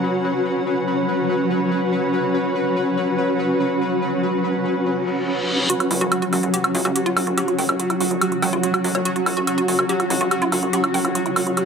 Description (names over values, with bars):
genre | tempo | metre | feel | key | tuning
psychedelic trance | 143 BPM | 4/4 | straight | unclear | A4 = 436 Hz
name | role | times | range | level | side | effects
pulsing gated texture | sustained chords | 0.0-11.7 s | F#3 to B4 | -23 LUFS | equal | chorus, built-in reverb
granular cloud pad | texture | 0.0-11.7 s | C#4 to F#5 | -22 LUFS | equal | built-in reverb
reverse cymbal | sound effects | 5.1-5.7 s | none | -24 LUFS | left 1 dB | none
woody wave-folded pluck | riff | 5.7-11.6 s | E#4 to G5 | -24 LUFS | right 2 dB | chorus, auto-pan, digital delay
electronic hi-hat and woodblock | drums | 5.7-11.7 s | none | -23 LUFS | right 1 dB | studio reverb
plucky analog bass | bass | 5.9-11.5 s | F#1 to F#2 | -29 LUFS | left 1 dB | high-pass filter
room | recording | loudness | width
moderate lush hall reverb, RT60 2.0 s | dark, warm production, high-pass filter | -18 LUFS | side -6 dB against mid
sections
0.0-5.7 A section; 5.7-11.7 B section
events
reverse cymbal 5.1-5.7; build-up 5.7-11.7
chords
0.0 F#5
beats
0.24 | 0.66 1.08 1.50 1.92 | 2.34 2.76 3.18 3.60 | 4.02 4.44 4.86 5.28 | 5.70 6.12 6.54 6.96 | 7.38 7.79 8.21 8.63 | 9.05 9.47 9.89 10.31 | 10.73 11.15 11.57